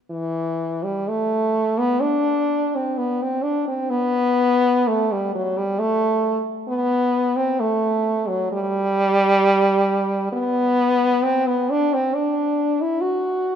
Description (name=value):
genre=classical, free, expressive piece for unaccompanied French horn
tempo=65 BPM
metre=3/4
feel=uneven beats, rubato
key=unclear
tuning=A4 = 440 Hz
part: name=warm French horn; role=solo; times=0.1-13.6 s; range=E3 to F#4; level=-18 LUFS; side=equal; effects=none
room=moderate church reverb, RT60 2.4 s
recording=minimal, uncompressed stereo recording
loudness=-18 LUFS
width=side -8 dB against mid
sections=0.1-13.6 A section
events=none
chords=none